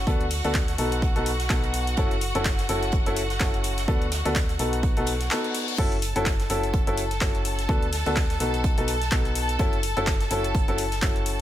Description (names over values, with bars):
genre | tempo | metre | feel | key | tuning
piano house | 126 BPM | 4/4 | swing 57% on 16ths | F# minor | A4 = 440 Hz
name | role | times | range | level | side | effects
clear studio violin section | sustained chords | 0.0-11.4 s | F#4 to A5 | -32 LUFS | equal | sidechain pumping
clear upright piano | riff | 0.0-11.4 s | B3 to A4 | -28 LUFS | left 1 dB | sidechain pumping, low-pass filter, tape echo
solid FM bass | bass | 0.0-11.4 s | F#1 to D2 | -29 LUFS | equal | sidechain pumping
electronic kick drum | drums | 0.1-11.1 s | none | -24 LUFS | equal | none
unplugged drum kit | drums | 0.1-11.4 s | hi-hat, snare drum | -38 LUFS | right 4 dB | sidechain pumping on hats, high-pass filter on hats, high-pass filter on snare, high-pass filter on room
punchy analog drum machine | drums | 0.2-11.4 s | crash cymbal, handclaps, hi-hat | -31 LUFS | left 1 dB | overdrive
reverse cymbal | sound effects | 5.0-5.8 s | none | -34 LUFS | left 6 dB | none
room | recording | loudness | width
small room ambience | none | -22 LUFS | side -12 dB against mid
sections
0.0-11.4 A section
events
reverse cymbal 5.0-5.8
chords
0.1 D6; 0.8 B7; 2.0 F#m7; 3.9 D6; 4.6 B7; 5.8 F#m7; 7.7 D6; 8.4 B7; 9.6 F#m7